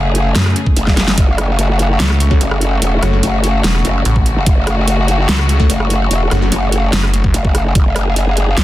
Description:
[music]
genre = heavy wobble dubstep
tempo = 146 BPM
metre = 4/4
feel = half-time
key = F# minor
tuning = A4 = 440 Hz
[part]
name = rich chamber string section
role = sustained chords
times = 0.0-8.6 s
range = C#3 to G#4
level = -20 LUFS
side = left 2 dB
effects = sidechain pumping
[part]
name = growl bass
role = bass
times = 0.0-8.6 s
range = E1 to F#1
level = -15 LUFS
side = equal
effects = chorus, overdrive
[part]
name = dubstep drum kit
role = drums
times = 0.1-8.6 s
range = hi-hat, rim click, snare drum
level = -19 LUFS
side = equal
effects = studio reverb
[part]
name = snarling distorted saw bass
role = bass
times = 0.4-8.6 s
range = E1 to F#2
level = -15 LUFS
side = equal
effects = distortion, overdrive
[part]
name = electronic kick drum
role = drums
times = 0.7-7.8 s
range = none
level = -13 LUFS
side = equal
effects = studio reverb
[part]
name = orchestra-hit-like synth stab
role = stabs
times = 2.3-6.6 s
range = A3 to F#4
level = -24 LUFS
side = left 3 dB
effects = built-in reverb, digital delay
[sound]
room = little or no reverb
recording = dense, heavily limited modern master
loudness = -11 LUFS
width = side -15 dB against mid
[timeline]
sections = 0.0-8.6 A section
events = drum fill 0.9-1.2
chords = 0.0 F#m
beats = 0.35 0.77 | 1.18 1.59 2.00 2.41 | 2.82 3.23 3.64 4.05 | 4.46 4.88 5.29 5.70 | 6.11 6.52 6.93 7.34 | 7.75 8.16 8.57

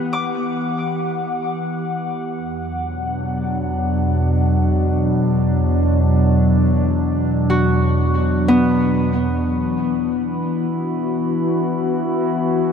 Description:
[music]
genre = ambient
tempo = free time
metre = none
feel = none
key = unclear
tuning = A4 = 440 Hz
[part]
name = warbly tape-like pad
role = sustained chords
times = 0.0-12.7 s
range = E2 to F#5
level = -17 LUFS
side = equal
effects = chorus, built-in reverb
[part]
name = Celtic harp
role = arpeggios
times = 0.0-12.6 s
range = B3 to D6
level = -22 LUFS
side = left 2 dB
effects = diffuse ambient delay
[part]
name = glass harmonica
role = texture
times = 9.3-12.7 s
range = B4 to B5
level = -32 LUFS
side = right 4 dB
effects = none
[sound]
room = moderate huge ambient reverb, RT60 8.3 s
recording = none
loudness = -17 LUFS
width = side -7 dB against mid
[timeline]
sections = 0.0-9.3 A section; 9.3-12.7 B section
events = fade-in on ambient pad 0.0-9.3; fade-in on glass harmonica 9.3-12.7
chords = 0.0 Em; 2.3 Bm/E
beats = free time

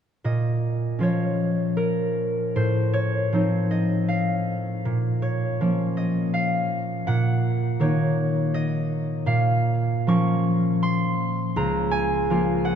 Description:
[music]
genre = classical, solo harp piece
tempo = 80 BPM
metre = 3/4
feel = uneven beats, rubato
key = Bb minor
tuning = A4 = 440 Hz
[part]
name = concert harp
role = solo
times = 0.2-12.8 s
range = Db2 to Db6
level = -21 LUFS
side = equal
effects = none
[sound]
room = wet cathedral reverb, RT60 6.0 s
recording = none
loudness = -21 LUFS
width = side -8 dB against mid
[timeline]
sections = 0.2-12.8 A section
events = none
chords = 0.2 Bbm; 2.6 F7/A; 4.8 Bbm; 7.0 Ebm/Bb; 9.3 Bbm; 11.5 Bbm/Db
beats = | 0.25 1.01 1.78 | 2.56 3.33 4.10 | 4.85 5.59 6.33 | 7.05 7.79 8.53 | 9.26 10.05 10.81 | 11.54 12.27

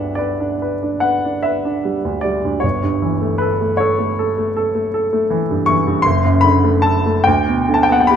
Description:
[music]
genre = classical, romantic nocturne for solo piano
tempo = 45-55 BPM (dotted quarters)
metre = 9/8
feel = rubato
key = G major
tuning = A4 = 440 Hz
[part]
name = clear baby grand piano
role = solo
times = 0.0-8.2 s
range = F#1 to C#6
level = -14 LUFS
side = equal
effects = none
[sound]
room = moderate recital hall reverb, RT60 1.4 s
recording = close, detailed microphones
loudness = -14 LUFS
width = side -8 dB against mid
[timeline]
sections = 0.0-8.2 A section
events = none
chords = 0.0 G; 2.6 A7/G; 6.1 D/F#; 7.3 G/D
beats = 0.19 1.45 | 2.64 3.81 4.94 | 6.05 7.26

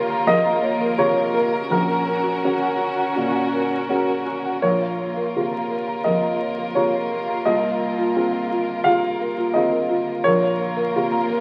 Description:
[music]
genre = neoclassical piano and strings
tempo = 85 BPM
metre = 4/4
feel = rubato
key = Bb minor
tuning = A4 = 444 Hz
[part]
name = warm upright piano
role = accompaniment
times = 0.0-11.4 s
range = Bb1 to F5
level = -24 LUFS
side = equal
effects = none
[part]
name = warm chamber string section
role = sustained chords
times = 0.0-11.4 s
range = Bb3 to Bb4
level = -26 LUFS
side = equal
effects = none
[part]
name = buzzing marimba with soft mallets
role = arpeggios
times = 0.0-11.4 s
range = F4 to Bb5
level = -28 LUFS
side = equal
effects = none
[sound]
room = moderate studio reverb, RT60 0.8 s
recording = very old 78 rpm record, vinyl crackle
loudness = -21 LUFS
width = mono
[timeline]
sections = 0.0-11.4 A section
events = none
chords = 0.0 Bbmadd9; 1.7 Gb/Bb; 4.6 Bbmadd9; 7.5 Fsus4/C; 10.2 Bbmadd9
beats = 0.26 0.97 | 1.69 2.42 3.15 3.89 | 4.62 5.34 6.05 6.75 | 7.46 8.15 8.85 9.55 | 10.25 10.95

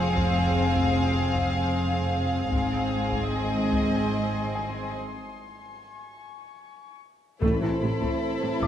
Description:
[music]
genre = cinematic, suspense film score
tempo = 75 BPM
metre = 3/4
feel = straight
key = unclear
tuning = A4 = 445 Hz
[part]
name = dark studio violin section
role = melody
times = 0.0-8.7 s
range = C5 to F5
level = -32 LUFS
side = left 1 dB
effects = none
[part]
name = clear studio violin section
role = second line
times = 0.0-8.7 s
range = E4 to Ab4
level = -33 LUFS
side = left 1 dB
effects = none
[part]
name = warm studio viola section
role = accompaniment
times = 0.0-8.7 s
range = C3 to C4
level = -29 LUFS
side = left 2 dB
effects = none
[part]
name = dark studio double bass section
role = bass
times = 0.0-8.7 s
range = F1 to A1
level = -30 LUFS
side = right 2 dB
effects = none
[part]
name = warm studio cello section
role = bass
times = 0.0-8.7 s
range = F2 to A2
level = -30 LUFS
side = right 1 dB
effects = none
[part]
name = felt-muted upright piano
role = texture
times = 0.0-8.7 s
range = G#5 to D6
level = -40 LUFS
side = left 2 dB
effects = none
[part]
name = warm chamber violin section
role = texture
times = 0.0-8.7 s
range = G#5 to C#7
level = -40 LUFS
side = left 3 dB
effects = none
[part]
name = taiko ensemble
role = drums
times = 0.2-8.7 s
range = none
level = -33 LUFS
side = equal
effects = none
[part]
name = mellow French horn section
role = sustained chords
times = 7.4-8.7 s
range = C4 to E4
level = -31 LUFS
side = left 2 dB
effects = none
[part]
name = warm trombone section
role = sustained chords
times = 7.4-8.7 s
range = E3 to A3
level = -33 LUFS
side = right 6 dB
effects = none
[part]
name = timpani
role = percussion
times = 7.4-8.6 s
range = A2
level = -31 LUFS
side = equal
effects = none
[sound]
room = moderate concert hall reverb, RT60 1.9 s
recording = lossy compression artefacts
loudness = -23 LUFS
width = side -10 dB against mid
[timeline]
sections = 0.0-7.4 A section; 7.4-8.7 B section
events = break 5.0-7.4; drum fill 6.8-7.4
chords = 0.0 Fm; 2.5 G#; 7.4 Am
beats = | 0.17 0.95 1.74 | 2.52 3.32 4.13 | 4.96 5.78 6.61 | 7.42 8.22

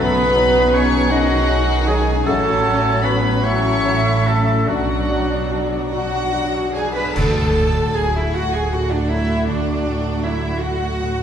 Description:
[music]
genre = cinematic, emotional film score for orchestra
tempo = 48-54 BPM (dotted quarters)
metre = 6/8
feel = rubato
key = unclear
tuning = A4 = 444 Hz
[part]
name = warm symphonic violin section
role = melody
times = 0.0-11.2 s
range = F#5 to C#6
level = -27 LUFS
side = left 2 dB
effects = none
[part]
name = clear oboe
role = second line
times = 0.0-5.9 s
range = F#4 to C#5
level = -25 LUFS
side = right 1 dB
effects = none
[part]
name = hollow concert flute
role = second line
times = 0.0-6.5 s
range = B4 to E5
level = -26 LUFS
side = equal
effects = none
[part]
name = warm clarinet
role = second line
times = 0.0-5.9 s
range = F#4 to C#5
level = -24 LUFS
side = right 1 dB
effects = none
[part]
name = warm studio violin section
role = second line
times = 0.0-11.2 s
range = D4 to B5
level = -27 LUFS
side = left 4 dB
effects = none
[part]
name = clear concert grand piano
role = accompaniment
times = 0.0-11.2 s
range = A1 to F#4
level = -25 LUFS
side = left 2 dB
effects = none
[part]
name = dark symphonic viola section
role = accompaniment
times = 0.0-11.2 s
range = D#3 to F#4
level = -26 LUFS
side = right 2 dB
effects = none
[part]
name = mellow French horn section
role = sustained chords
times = 0.0-5.9 s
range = F#3 to C#4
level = -24 LUFS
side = left 2 dB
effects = none
[part]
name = concert harp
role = arpeggios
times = 0.0-11.2 s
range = A2 to F#5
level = -28 LUFS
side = left 6 dB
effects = none
[part]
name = dark chamber cello section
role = bass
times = 0.0-11.2 s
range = A2 to B4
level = -24 LUFS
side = right 2 dB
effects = none
[part]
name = dark symphonic double bass section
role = bass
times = 0.0-11.2 s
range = A1 to D2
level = -23 LUFS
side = right 2 dB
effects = none
[part]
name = cymbal swell, clash cymbals and concert bass drum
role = percussion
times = 4.7-8.7 s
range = none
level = -24 LUFS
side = equal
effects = none
[sound]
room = wet recital hall reverb, RT60 1.6 s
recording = recorded in a church or concert hall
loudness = -16 LUFS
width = side -8 dB against mid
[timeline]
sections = 0.0-7.2 A section; 7.2-11.2 B section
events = band accent 7.2-7.9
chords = 0.0 Badd9; 2.3 F#m/A; 4.7 Bm; 7.2 D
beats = 1.11 | 2.26 3.44 | 4.68 5.92 | 7.16 8.34 | 9.48 10.62

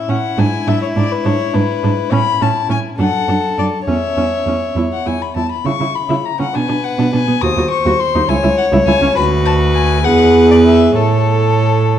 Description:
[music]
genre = quick classical-period movement for string quartet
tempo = 68 BPM (dotted quarters)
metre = 6/8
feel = straight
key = unclear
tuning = A4 = 440 Hz
[part]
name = warm violin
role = melody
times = 0.0-12.0 s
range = B4 to D#6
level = -19 LUFS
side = left 8 dB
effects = none
[part]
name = rich violin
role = second line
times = 0.0-12.0 s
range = E4 to C#5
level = -20 LUFS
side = left 3 dB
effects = none
[part]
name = warm viola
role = accompaniment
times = 0.1-12.0 s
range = B3 to A4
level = -18 LUFS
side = equal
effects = none
[part]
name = rich cello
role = bass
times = 0.1-12.0 s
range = C#2 to C#3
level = -16 LUFS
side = right 3 dB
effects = none
[sound]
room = wet recital hall reverb, RT60 1.5 s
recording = dark, warm production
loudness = -12 LUFS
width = side -10 dB against mid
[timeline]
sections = 0.0-12.0 A section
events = none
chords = 0.4 E7/G#; 2.1 A; 3.0 D/F#; 3.9 C#m/E; 4.8 E5; 5.7 C#m7; 6.5 Bm; 7.4 D#m6; 8.3 C#m; 9.2 Bm/D; 10.1 E; 11.0 A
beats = | 0.38 1.25 | 2.11 2.98 | 3.87 4.77 | 5.66 6.55 | 7.42 8.29 | 9.16 10.05 | 10.96 11.88

